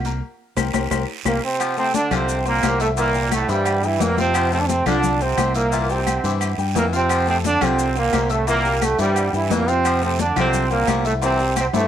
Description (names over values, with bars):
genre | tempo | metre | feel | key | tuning
latin, salsa | 175 BPM | 4/4 | straight | F major | A4 = 438 Hz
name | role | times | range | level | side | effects
fingered electric bass | bass | 0.0-11.9 s | C2 to G2 | -24 LUFS | right 1 dB | none
agogo bells and timbales | percussion | 0.0-11.8 s | none | -30 LUFS | right 13 dB | none
clear grand piano | accompaniment | 0.1-11.9 s | E3 to E6 | -28 LUFS | left 10 dB | plate reverb
congas | percussion | 0.1-11.8 s | none | -27 LUFS | left 10 dB | none
guiro | percussion | 0.1-11.9 s | none | -35 LUFS | right 13 dB | none
maracas | percussion | 0.1-11.9 s | none | -34 LUFS | left 10 dB | none
claves | percussion | 0.6-11.7 s | none | -32 LUFS | left 10 dB | none
bright trombone section | melody | 1.3-11.9 s | G2 to E4 | -20 LUFS | right 3 dB | cassette tape
growling baritone saxophone | second line | 1.6-11.9 s | Bb2 to F3 | -28 LUFS | left 8 dB | plate reverb
room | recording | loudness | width
moderate booth ambience, RT60 0.3 s | home recording on cassette | -17 LUFS | side -10 dB against mid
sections
0.0-1.6 A section; 1.6-11.9 B section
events
band accent 0.2-1.6; drum fill 0.7-1.6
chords
0.2 C5; 1.6 F; 3.0 C7; 4.3 F; 5.7 C7; 7.1 F; 8.5 C7; 9.8 F; 11.2 C7